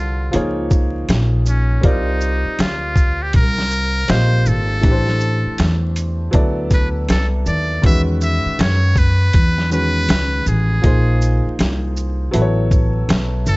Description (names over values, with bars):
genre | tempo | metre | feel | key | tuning
hip hop, jazz-hop | 80 BPM | 4/4 | swing 63% on 16ths | unclear | A4 = 440 Hz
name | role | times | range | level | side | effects
trumpet with metal mute | melody | 0.0-13.6 s | C#4 to E5 | -22 LUFS | equal | none
clear concert grand piano | accompaniment | 0.0-13.6 s | D3 to Eb5 | -23 LUFS | equal | none
upright bass | bass | 0.0-13.6 s | G1 to F#2 | -18 LUFS | equal | none
boom bap sampler-style drum kit | drums | 0.3-13.6 s | hi-hat, kick drum, shaker, snare drum | -16 LUFS | equal | none
room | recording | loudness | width
small room reverb | vinyl crackle, nothing above 7.9 kHz | -14 LUFS | side -24 dB against mid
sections
0.0-13.6 A section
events
none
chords
0.3 C#69; 1.8 Cm7; 4.8 Am7; 6.3 D9; 7.8 Emaj9; 10.8 Bbsus2; 12.3 A